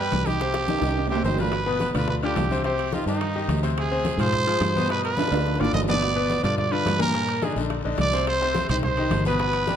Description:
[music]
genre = latin, salsa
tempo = 214 BPM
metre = 4/4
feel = straight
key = C harmonic minor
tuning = A4 = 440 Hz
[part]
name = growling trumpet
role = melody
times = 0.0-9.8 s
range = Eb4 to Eb5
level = -26 LUFS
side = right 3 dB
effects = none
[part]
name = bright grand piano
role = accompaniment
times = 0.0-9.8 s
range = Bb2 to G5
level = -27 LUFS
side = left 3 dB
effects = none
[part]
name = fingered electric bass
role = bass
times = 0.0-9.8 s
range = G1 to Ab2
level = -27 LUFS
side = equal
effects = none
[part]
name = bongos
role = percussion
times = 0.1-9.8 s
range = none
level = -36 LUFS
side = left 7 dB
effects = none
[part]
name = congas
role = percussion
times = 0.1-9.8 s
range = none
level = -31 LUFS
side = left 1 dB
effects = none
[part]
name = guiro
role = percussion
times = 0.1-9.8 s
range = none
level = -42 LUFS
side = left 5 dB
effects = none
[part]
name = timbales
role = percussion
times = 0.1-9.7 s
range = none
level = -32 LUFS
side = right 8 dB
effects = none
[sound]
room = wet large studio reverb, RT60 1.3 s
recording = dark, warm production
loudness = -21 LUFS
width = side -9 dB against mid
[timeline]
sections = 0.0-1.5 A section; 1.5-9.8 B section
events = drum fill 0.4-1.5, 5.2-6.0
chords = 0.4 Cm; 1.5 G7; 2.6 Cm; 3.8 Dm7b5; 4.9 G7; 7.1 Ebmaj7; 8.3 Cm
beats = 0.12 | 0.40 0.68 0.96 1.25 | 1.53 1.81 2.09 2.37 | 2.65 2.93 3.21 3.49 | 3.77 4.05 4.34 4.62 | 4.90 5.18 5.46 5.74 | 6.02 6.30 6.58 6.87 | 7.15 7.43 7.71 7.99 | 8.27 8.55 8.83 9.11 | 9.39 9.68

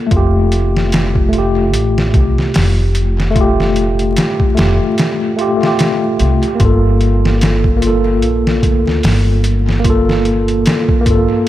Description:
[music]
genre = trip hop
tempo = 74 BPM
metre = 4/4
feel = swing 57% on 16ths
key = unclear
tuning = A4 = 439 Hz
[part]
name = mellow tine electric piano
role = accompaniment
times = 0.0-11.5 s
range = A3 to A4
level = -15 LUFS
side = equal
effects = overdrive, medium stereo tremolo, harmonic tremolo, vintage 12-bit sampler grit, tape echo
[part]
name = upright bass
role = bass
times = 0.1-11.3 s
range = F1 to D2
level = -15 LUFS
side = equal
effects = none
[part]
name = trip hop sampler-style drum kit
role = drums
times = 0.1-11.3 s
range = hi-hat, kick drum, snare drum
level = -16 LUFS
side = equal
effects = overdrive
[sound]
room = light reverb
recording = echo-heavy mix, vinyl crackle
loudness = -11 LUFS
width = side -14 dB against mid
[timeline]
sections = 0.0-11.5 A section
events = none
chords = 0.1 Fadd9; 6.6 Gm7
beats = | 0.12 0.93 1.74 2.55 | 3.36 4.17 4.98 5.79 | 6.60 7.41 8.22 9.04 | 9.85 10.66 11.47

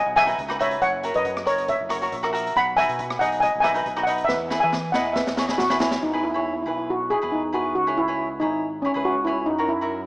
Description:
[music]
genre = calypso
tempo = 138 BPM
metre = 4/4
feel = straight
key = E major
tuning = A4 = 440 Hz
[part]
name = steel pan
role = melody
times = 0.0-10.1 s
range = C#4 to B5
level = -22 LUFS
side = equal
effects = tape echo
[part]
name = overdriven fingered electric bass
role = bass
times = 0.1-10.1 s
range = F#1 to E3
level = -35 LUFS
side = equal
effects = none
[part]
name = cavaquinho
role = accompaniment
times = 0.2-10.0 s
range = D#4 to E5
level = -27 LUFS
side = equal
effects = none
[part]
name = street-band drum kit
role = drums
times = 0.2-6.0 s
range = hi-hat, kick drum, rim click, snare drum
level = -30 LUFS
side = equal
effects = none
[sound]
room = wet lush hall reverb, RT60 2.0 s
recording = rough home demo mix, small speaker sound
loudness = -20 LUFS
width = side -22 dB against mid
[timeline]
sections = 0.0-6.0 A section; 6.0-10.1 B section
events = drum fill 4.3-6.0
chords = 0.0 B; 0.8 F#7; 2.6 B; 4.3 E; 7.8 C#m; 9.5 F#7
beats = 0.39 | 0.82 1.26 1.69 2.12 | 2.56 2.99 3.42 3.86 | 4.29 4.73 5.16 5.59 | 6.03 6.46 6.89 7.32 | 7.76 8.19 8.62 9.05 | 9.49 9.92

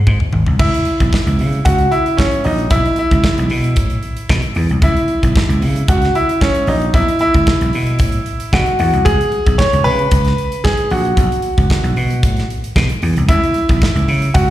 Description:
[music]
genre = disco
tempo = 114 BPM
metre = 4/4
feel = straight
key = C# minor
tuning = A4 = 440 Hz
[part]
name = clear baby grand piano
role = melody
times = 0.0-14.5 s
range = C#4 to C#5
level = -17 LUFS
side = equal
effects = slapback echo
[part]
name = vintage slap bass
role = bass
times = 0.1-14.5 s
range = G#1 to C#3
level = -16 LUFS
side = equal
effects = none
[part]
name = modern studio drum kit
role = drums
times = 0.1-14.5 s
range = crash cymbal, hi-hat, kick drum, snare drum, toms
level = -16 LUFS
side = equal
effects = none
[sound]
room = studio reverb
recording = live gig heard through the venue's PA, recital hall reverb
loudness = -12 LUFS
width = side -14 dB against mid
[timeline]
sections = 0.6-14.5 A section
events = drum fill 0.0-0.6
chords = 0.0 G#; 0.6 C#m; 2.7 B7sus4; 4.8 C#m; 6.9 B7sus4; 9.1 C#5; 11.2 B7(no3); 13.3 C#m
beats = 0.06 | 0.59 1.12 1.65 2.18 | 2.71 3.23 3.76 4.29 | 4.82 5.35 5.88 6.41 | 6.93 7.46 7.99 8.52 | 9.05 9.58 10.11 10.64 | 11.17 11.70 12.23 12.76 | 13.29 13.82 14.35

